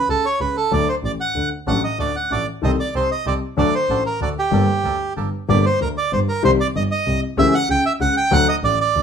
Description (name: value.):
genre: tango.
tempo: 190 BPM.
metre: 3/4.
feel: rubato.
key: G harmonic minor.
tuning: A4 = 440 Hz.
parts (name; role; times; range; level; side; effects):
bandoneon; melody; 0.0-9.0 s; G4 to G5; -20 LUFS; right 3 dB; none.
dark grand piano; accompaniment; 0.1-9.0 s; G1 to A4; -22 LUFS; left 4 dB; none.
rich double bass; bass; 0.1-9.0 s; G1 to D2; -24 LUFS; right 2 dB; none.
bandoneon; stabs; 1.7-5.3 s; A3 to A4; -30 LUFS; right 6 dB; none.
room: light reverb.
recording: none.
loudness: -17 LUFS.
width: side -7 dB against mid.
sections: 0.0-5.5 A section; 5.5-9.0 B section.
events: none.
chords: 0.0 A/C#; 0.7 D; 2.6 Adim/C; 3.6 D; 4.5 Gmadd9; 5.5 Gm; 6.4 Cm; 7.4 A7/C#; 8.3 D.